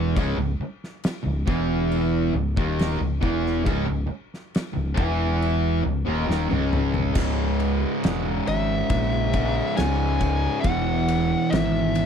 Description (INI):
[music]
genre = stoner and doom metal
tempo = 69 BPM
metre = 4/4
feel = straight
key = C# dorian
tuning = A4 = 439 Hz
[part]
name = fuzz guitar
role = riff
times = 0.0-12.1 s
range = C#2 to E3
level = -24 LUFS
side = right 1 dB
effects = distortion
[part]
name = overdriven fingered electric bass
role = bass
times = 0.0-12.1 s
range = C#1 to C#2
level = -26 LUFS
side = left 1 dB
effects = none
[part]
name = oversized low-tuned drum kit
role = drums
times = 0.2-12.1 s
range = crash cymbal, kick drum, ride cymbal, snare drum, toms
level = -28 LUFS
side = left 1 dB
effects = none
[part]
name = fuzz lead guitar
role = melody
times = 8.5-12.1 s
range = E5 to G#5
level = -27 LUFS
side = left 2 dB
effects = distortion
[sound]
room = little or no reverb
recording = dry, close 1970s-style studio recording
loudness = -21 LUFS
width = side -7 dB against mid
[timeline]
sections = 0.0-7.2 A section; 7.2-12.1 B section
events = drum fill 6.3-7.2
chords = 0.0 C#m; 10.6 E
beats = | 0.17 1.04 1.92 2.79 | 3.67 4.54 5.41 6.29 | 7.16 8.03 8.90 9.77 | 10.64 11.52